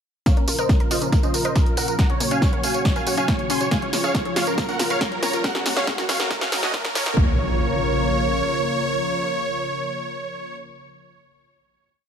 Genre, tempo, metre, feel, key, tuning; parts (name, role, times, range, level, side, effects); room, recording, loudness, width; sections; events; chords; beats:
uplifting trance; 139 BPM; 4/4; straight; Bb minor; A4 = 440 Hz
supersaw chords; melody; 0.3-10.6 s; Gb4 to C6; -24 LUFS; right 1 dB; sidechain pumping, low-pass filter, ping-pong delay
lush unison pad; sustained chords; 0.3-10.6 s; Ab2 to Bb4; -28 LUFS; left 1 dB; chorus, sidechain pumping
wide unison pluck; arpeggios; 0.3-7.4 s; Ab3 to Db5; -29 LUFS; moving between left 7 dB and right 1 dB; auto-pan, sidechain pumping, ping-pong delay
electronic kick drum; drums; 0.3-7.3 s; -20 LUFS; equal
punchy analog drum machine; drums; 0.3-7.1 s; hi-hat, snare drum, tambourine; -26 LUFS; right 1 dB
riser and impact; sound effects; 1.9-10.6 s; -32 LUFS; equal
tight sequencer bass; bass; 0.5-8.4 s; Gb1 to Bb2; -31 LUFS; equal
light reverb, digital ambience; high-pass filter; -19 LUFS; side -8 dB against mid
0.3-7.2 build; 7.2-10.6 final chord
build-up 0.3-7.2; drum fill 0.3-7.2; filter sweep on supersaw synth 0.3-7.2; filter sweep 0.3-7.2; riser 1.9-7.2
0.3 Bbm; 2.0 Gb; 3.7 Db; 4.6 Bbm; 5.4 Gb; 6.3 Ebm7; 7.2 Bbm
| 0.26 0.69 1.13 1.56 | 1.99 2.42 2.85 3.28 | 3.71 4.15 4.58 5.01 | 5.44 5.87 6.30 6.74 | 7.17 7.60 8.03 8.46 | 8.89 9.33 9.76 10.19